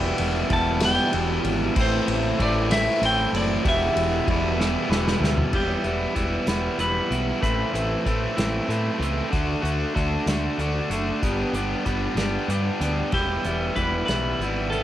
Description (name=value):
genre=indie rock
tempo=63 BPM (dotted quarters)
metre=6/8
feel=straight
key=E minor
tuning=A4 = 442 Hz
part: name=clean electric guitar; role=melody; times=0.0-9.0, 13.1-14.8 s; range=G4 to A5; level=-27 LUFS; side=equal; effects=vibrato effect
part: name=crunchy overdriven guitar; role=riff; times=0.0-14.8 s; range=E2 to G4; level=-24 LUFS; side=equal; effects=none
part: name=growling fingered electric bass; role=bass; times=0.0-14.8 s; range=E1 to A2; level=-27 LUFS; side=equal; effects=overdrive
part: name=unplugged drum kit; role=drums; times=0.2-14.8 s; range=crash cymbal, hi-hat, kick drum, ride cymbal, snare drum, toms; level=-28 LUFS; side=equal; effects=cassette tape
room=little or no reverb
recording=home recording on cassette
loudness=-21 LUFS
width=side -12 dB against mid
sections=0.0-5.5 A section; 5.5-13.1 B section; 13.1-14.8 C section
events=drum fill 4.6-5.5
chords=0.0 Em; 1.8 Am; 3.6 Em7; 5.5 Em; 7.4 Am; 9.3 D; 11.2 G; 13.1 Em